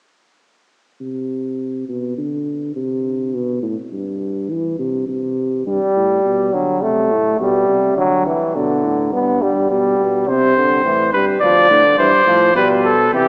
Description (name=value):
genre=classical, imitative canzona for brass ensemble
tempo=104 BPM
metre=4/4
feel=straight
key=C major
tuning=A4 = 440 Hz
part: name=mellow tuba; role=bass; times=1.0-13.3 s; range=D2 to E3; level=-24 LUFS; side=equal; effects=none
part: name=warm trombone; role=accompaniment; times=5.7-13.3 s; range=C3 to B3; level=-18 LUFS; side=equal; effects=none
part: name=clear trumpet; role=second line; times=10.3-13.3 s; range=G4 to D5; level=-15 LUFS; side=equal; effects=none
room=wet cathedral reverb, RT60 5.3 s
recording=small speaker sound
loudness=-17 LUFS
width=mono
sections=1.0-13.3 A section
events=none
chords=1.0 N.C.; 2.2 Csus2; 3.3 G; 4.5 C; 5.7 G; 6.8 Am; 8.0 D; 9.1 G; 10.3 C; 11.4 Dm; 12.6 G/B